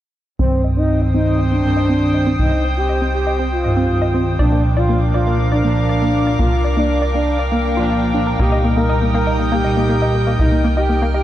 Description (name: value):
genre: techno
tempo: 120 BPM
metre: 4/4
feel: straight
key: C minor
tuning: A4 = 440 Hz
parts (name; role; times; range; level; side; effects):
- expressive portamento lead; melody; 0.4-11.2 s; Bb3 to Bb4; -20 LUFS; equal; chorus, dub echo
- evolving wavetable pad; sustained chords; 0.8-11.2 s; Bb4 to F6; -26 LUFS; equal; chorus, built-in reverb
- analog pluck; arpeggios; 0.4-11.2 s; Bb3 to Eb5; -24 LUFS; equal; chorus, dub echo
- analog synth brass; stabs; 0.4-10.5 s; G2 to Eb4; -19 LUFS; right 1 dB; chorus, cassette tape
- tight sequencer bass; bass; 0.4-11.2 s; C2; -20 LUFS; equal; none
- airy breathy pad; texture; 0.8-11.2 s; C4 to G5; -25 LUFS; equal; chorus
room: light reverb, digital ambience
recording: none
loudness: -14 LUFS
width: side -13 dB against mid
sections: 0.4-11.2 A section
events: filter sweep on synth arpeggio sound 0.4-11.2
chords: 0.4 Cm; 4.4 Bb/C; 8.4 Eb/C